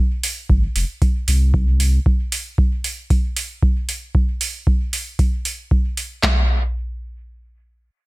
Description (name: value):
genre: dub techno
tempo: 115 BPM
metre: 4/4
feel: swing 53% on 16ths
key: unclear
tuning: A4 = 440 Hz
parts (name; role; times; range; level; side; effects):
- electronic hi-hat; drums; 0.2-6.1 s; none; -24 LUFS; right 3 dB; none
- soft dub sub bass; bass; 0.5-2.0 s; F1 to C2; -16 LUFS; equal; sidechain pumping
- booming analog drum machine; drums; 0.5-6.4 s; handclaps, kick drum, snare drum; -17 LUFS; equal; gated reverb
room: digital ambience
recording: bright 1980s-style digital production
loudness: -17 LUFS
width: side -22 dB against mid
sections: 0.0-6.2 A section; 6.2-8.1 B section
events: none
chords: none